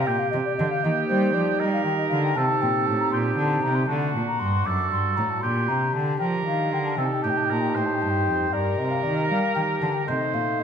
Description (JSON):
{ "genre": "classical, baroque-style sonata movement with continuo", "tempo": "78 BPM (dotted quarters)", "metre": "12/8", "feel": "rubato", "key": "G minor", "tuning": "A4 = 441 Hz", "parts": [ { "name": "baroque flute", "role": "melody", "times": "0.0-10.6 s", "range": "C5 to D6", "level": "-28 LUFS", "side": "left 7 dB", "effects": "none" }, { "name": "warm oboe", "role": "second line", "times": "0.0-10.6 s", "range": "F#4 to C5", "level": "-27 LUFS", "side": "right 5 dB", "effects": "none" }, { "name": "pipe organ, foundations", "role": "accompaniment", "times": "0.0-10.6 s", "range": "F2 to Bb4", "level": "-27 LUFS", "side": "right 1 dB", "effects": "none" }, { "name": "warm cello", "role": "bass", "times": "0.0-10.6 s", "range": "F2 to G3", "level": "-27 LUFS", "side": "right 1 dB", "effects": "none" } ], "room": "wet recital hall reverb, RT60 1.6 s", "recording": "none", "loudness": "-21 LUFS", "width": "side -7 dB against mid", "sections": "0.0-10.6 A section", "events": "none", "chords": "0.0 Gm; 0.8 Eb; 2.4 Cm; 3.9 D; 5.4 Gm/Bb; 7.0 Cm; 8.5 Gm; 10.1 Adim" }